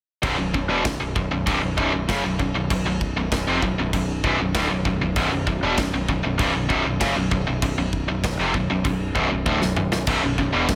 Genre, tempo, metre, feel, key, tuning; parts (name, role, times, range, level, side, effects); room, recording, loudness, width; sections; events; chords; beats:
heavy metal; 98 BPM; 4/4; straight; A4 = 440 Hz
tight distorted guitar; riff; 0.2-10.8 s; B1 to C#3; -24 LUFS; equal; distortion
growling picked electric bass; bass; 0.2-10.8 s; B0 to F#1; -30 LUFS; equal; overdrive
big rock drum kit; drums; 0.2-10.8 s; crash cymbal, kick drum, snare drum, splash cymbal, toms; -29 LUFS; equal
studio reverb; -23 LUFS; mono
0.2-10.8 A section
drum fill 9.5-10.1
0.2 B5
| 0.23 0.85 1.47 2.08 | 2.70 3.32 3.93 4.55 | 5.16 5.78 6.39 7.01 | 7.62 8.23 8.85 9.46 | 10.07 10.69